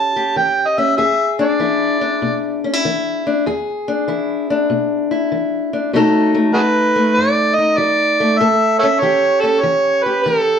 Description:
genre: acoustic country blues, solo or duo.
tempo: 97 BPM.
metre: 4/4.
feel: swing 66% on 8ths.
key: E mixolydian.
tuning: A4 = 441 Hz.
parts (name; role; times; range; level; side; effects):
overdriven harmonica; melody; 0.0-2.6, 6.5-10.6 s; F#4 to A5; -15 LUFS; right 1 dB; none.
fingerpicked steel-string acoustic guitar; accompaniment; 0.0-10.6 s; E2 to A4; -17 LUFS; left 2 dB; none.
room: wet studio reverb, RT60 0.7 s.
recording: heard from further back in the room.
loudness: -14 LUFS.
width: side -7 dB against mid.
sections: 0.0-10.6 A section.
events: none.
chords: 0.0 A7; 1.0 E7; 5.9 B7; 8.4 A7.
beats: 0.36 | 0.98 1.60 2.22 2.84 | 3.45 4.07 4.69 5.31 | 5.92 6.54 7.16 7.78 | 8.40 9.02 9.64 10.26.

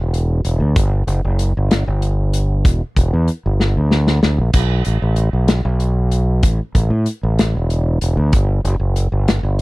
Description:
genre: math rock and midwest emo.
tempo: 63 BPM (dotted quarters).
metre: 6/8.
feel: straight.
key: unclear.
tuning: A4 = 440 Hz.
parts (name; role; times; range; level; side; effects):
growling fingered electric bass; bass; 0.0-9.6 s; E1 to A2; -15 LUFS; equal; overdrive.
loose indie drum kit; drums; 0.1-9.6 s; crash cymbal, hi-hat, kick drum, snare drum; -17 LUFS; equal; none.
room: little or no reverb.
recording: dry, close 1970s-style studio recording.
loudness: -14 LUFS.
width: side -22 dB against mid.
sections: 0.0-9.6 A section.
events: drum fill 3.6-4.6.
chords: none.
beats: | 0.77 1.71 | 2.66 3.61 | 4.55 5.50 | 6.45 7.40 | 8.34 9.29.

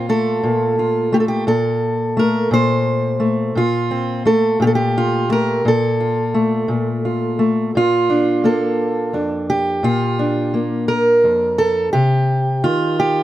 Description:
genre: folk, solo fingerstyle acoustic guitar.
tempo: 57 BPM (dotted quarters).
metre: 6/8.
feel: straight.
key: Bb major.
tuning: A4 = 443 Hz.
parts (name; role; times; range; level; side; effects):
fingerpicked steel-string acoustic guitar; solo; 0.0-13.2 s; F2 to C5; -15 LUFS; equal; none.
room: light reverb.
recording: dark, warm production.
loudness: -15 LUFS.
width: side -14 dB against mid.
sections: 0.0-7.7 A section; 7.7-13.2 B section.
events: none.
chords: 0.0 F/Bb; 7.7 Bb; 11.9 Cm.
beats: 0.43 | 1.48 2.52 | 3.57 4.61 | 5.65 6.70 | 7.74 8.79 | 9.84 10.89 | 11.94 12.99.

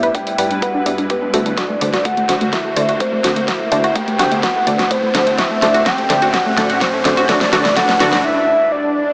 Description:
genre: progressive house.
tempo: 126 BPM.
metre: 4/4.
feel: straight.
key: unclear.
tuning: A4 = 440 Hz.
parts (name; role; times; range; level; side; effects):
soft octave-layered synth lead; melody; 0.0-9.0 s; B4 to G5; -17 LUFS; equal; chorus, phaser, tape echo.
evolving wavetable pad; sustained chords; 0.0-8.2 s; D2 to C5; -26 LUFS; equal; ensemble chorus, built-in reverb, sidechain pumping.
analog pluck; arpeggios; 0.0-8.2 s; A3 to B4; -20 LUFS; equal; chorus, sidechain pumping, tape echo.
pop drum kit; drums; 0.0-8.2 s; hi-hat, snare drum; -21 LUFS; equal; sidechain pumping on hats, studio reverb.
riser and swell; sound effects; 0.2-9.1 s; none; -24 LUFS; equal; none.
electronic kick drum; drums; 0.1-7.9 s; none; -24 LUFS; equal; none.
wide unison pluck; stabs; 0.4-8.1 s; G2 to A5; -21 LUFS; equal; sidechain pumping, tape echo.
room: moderate lush hall reverb, RT60 1.9 s.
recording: small speaker sound.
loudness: -13 LUFS.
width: side -30 dB against mid.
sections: 0.0-9.1 A section.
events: build-up 0.0-9.1; filter sweep on synth arpeggio sound 0.0-9.1; filter sweep on synth pluck 0.0-9.1; filter sweep on soft synth lead 0.0-9.1; drum fill 1.6-8.2; break 8.2-9.1; swell 8.2-9.1.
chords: 0.0 G6; 1.6 D7; 3.5 C6; 5.4 Am7; 7.3 G6.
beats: 0.15 0.62 1.10 | 1.57 2.05 2.53 3.00 | 3.48 3.96 4.43 4.91 | 5.38 5.86 6.34 6.81 | 7.29 7.76 8.24 8.72.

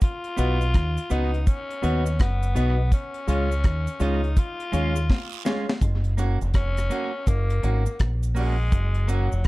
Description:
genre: roots reggae.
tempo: 83 BPM.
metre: 4/4.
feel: swing 64% on 16ths.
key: F# major.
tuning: A4 = 441 Hz.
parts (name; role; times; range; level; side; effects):
breathy tenor saxophone; melody; 0.0-9.5 s; F#3 to E#4; -31 LUFS; left 2 dB; tape echo.
deep reggae drum kit; drums; 0.0-9.5 s; hi-hat, kick drum, rim click, snare drum; -22 LUFS; equal; none.
cabasa and guiro; percussion; 0.0-9.4 s; none; -42 LUFS; right 11 dB; none.
clean electric guitar; accompaniment; 0.4-9.3 s; G#3 to F#4; -30 LUFS; right 2 dB; tape echo.
barky reed electric piano; stabs; 0.4-5.7 s; E#4 to D#5; -31 LUFS; left 4 dB; overdrive, fast tremolo.
deep dub fingered electric bass; bass; 0.4-9.5 s; E#1 to D#2; -23 LUFS; equal; none.
room: light reverb.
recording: dark, warm production.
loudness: -21 LUFS.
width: side -20 dB against mid.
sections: 0.0-5.8 A section; 5.8-9.5 B section.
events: drum fill 5.1-5.8.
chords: 0.0 B; 2.9 C#; 5.8 F#.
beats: | 0.02 0.74 1.47 2.19 | 2.92 3.64 4.37 5.09 | 5.82 6.54 7.27 8.00 | 8.72 9.45.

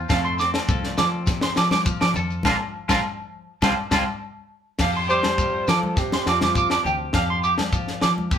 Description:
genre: highlife guitar band.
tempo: 102 BPM.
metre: 4/4.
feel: straight.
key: F major.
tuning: A4 = 440 Hz.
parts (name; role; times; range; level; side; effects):
clean electric guitar; accompaniment; 0.0-8.4 s; F2 to A4; -30 LUFS; left 4 dB; none.
fingered electric bass; bass; 0.0-8.3 s; Bb1 to F3; -27 LUFS; equal; none.
electric guitar at the edge of break-up; arpeggios; 0.1-8.1 s; F5 to D6; -24 LUFS; right 4 dB; none.
tight funk drum kit; drums; 0.1-8.4 s; crash cymbal, kick drum, snare drum; -25 LUFS; left 1 dB; none.
agogo bells; percussion; 0.1-8.2 s; none; -31 LUFS; equal; none.
shekere; percussion; 0.1-8.4 s; none; -31 LUFS; left 2 dB; none.
congas; percussion; 1.0-8.3 s; none; -31 LUFS; left 3 dB; none.
breathy trumpet; melody; 5.1-6.9 s; F4 to C5; -24 LUFS; equal; none.
breathy trombone; second line; 5.1-6.9 s; C3 to G3; -32 LUFS; right 1 dB; none.
room: moderate studio reverb, RT60 0.7 s.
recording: band playing live in one room.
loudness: -19 LUFS.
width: side -8 dB against mid.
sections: 0.0-4.8 A section; 4.8-8.4 B section.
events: band accent 2.5-4.8.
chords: 0.1 F; 2.5 Bbsus2; 3.6 Csus4; 4.8 Fsus2.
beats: | 0.10 0.69 1.28 1.86 | 2.45 3.04 3.62 4.21 | 4.80 5.38 5.97 6.55 | 7.14 7.73 8.31.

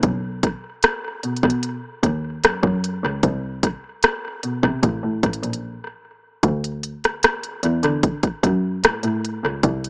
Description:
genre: contemporary R&B.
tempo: 75 BPM.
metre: 4/4.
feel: straight.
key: unclear.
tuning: A4 = 441 Hz.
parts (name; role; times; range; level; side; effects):
clear double bass; bass; 0.0-9.9 s; A1 to D3; -22 LUFS; equal; none.
trap drum kit; drums; 0.0-9.9 s; hi-hat, kick drum, rim click; -18 LUFS; equal; tape echo.
room: light reverb.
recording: echo-heavy mix, small speaker sound.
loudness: -19 LUFS.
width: side -26 dB against mid.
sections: 0.0-6.4 A section; 6.4-9.9 B section.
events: break 5.6-6.4.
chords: none.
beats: | 0.03 0.83 1.63 2.43 | 3.23 4.03 4.83 5.63 | 6.43 7.23 8.03 8.83 | 9.63.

